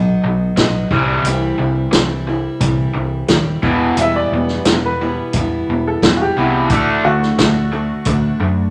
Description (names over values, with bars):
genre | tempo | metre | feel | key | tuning
folk rock and heartland rock | 88 BPM | 4/4 | straight | E minor | A4 = 440 Hz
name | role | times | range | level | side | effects
picked steel-string acoustic guitar | accompaniment | 0.0-8.7 s | E2 to F#4 | -24 LUFS | equal | none
raw garage guitar | riff | 0.0-8.7 s | E2 to D4 | -21 LUFS | equal | overdrive
hollow-body short-scale picked electric bass | bass | 0.0-8.7 s | E1 to F#2 | -23 LUFS | equal | none
vintage drum kit | drums | 0.6-8.2 s | hi-hat, kick drum, snare drum | -19 LUFS | equal | none
bright upright piano | second line | 4.0-8.7 s | A3 to E5 | -23 LUFS | equal | none
room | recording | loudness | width
light reverb | none | -16 LUFS | mono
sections
0.0-8.7 A section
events
none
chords
0.0 B; 0.9 C; 3.6 Em; 6.7 D